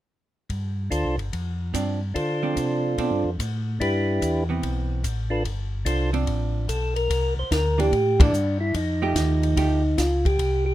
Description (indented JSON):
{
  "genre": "soul jazz organ trio",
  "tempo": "146 BPM",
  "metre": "4/4",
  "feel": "swing 67% on 8ths",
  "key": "unclear",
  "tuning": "A4 = 440 Hz",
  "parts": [
    { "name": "mellow tonewheel organ", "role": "bass", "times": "0.5-10.7 s", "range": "G1 to D3", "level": "-25 LUFS", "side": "equal", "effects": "slow rotary speaker" },
    { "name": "compact cocktail drum kit", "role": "drums", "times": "0.5-10.5 s", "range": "hi-hat, kick drum, ride cymbal, snare drum", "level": "-24 LUFS", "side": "left 1 dB", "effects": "none" },
    { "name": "percussive tonewheel organ", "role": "melody", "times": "0.9-10.7 s", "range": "D4 to C5", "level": "-24 LUFS", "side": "right 1 dB", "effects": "slow rotary speaker" },
    { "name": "hollow-body jazz guitar", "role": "accompaniment", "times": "1.7-9.8 s", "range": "E3 to G4", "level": "-28 LUFS", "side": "right 5 dB", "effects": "none" }
  ],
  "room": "light reverb",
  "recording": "minimal, uncompressed stereo recording",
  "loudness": "-21 LUFS",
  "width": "side -14 dB against mid",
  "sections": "0.5-7.1 A section; 7.1-10.7 B section",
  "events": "band accent 8.1",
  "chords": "0.5 G7sus4; 3.8 Cmaj7; 5.5 G7sus4; 7.1 C9; 8.7 F9",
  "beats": "| 0.50 0.91 1.33 1.74 | 2.15 2.56 2.98 3.39 | 3.80 4.21 4.63 5.04 | 5.45 5.86 6.27 6.68 | 7.10 7.51 7.92 8.33 | 8.74 9.15 9.56 9.97 | 10.38"
}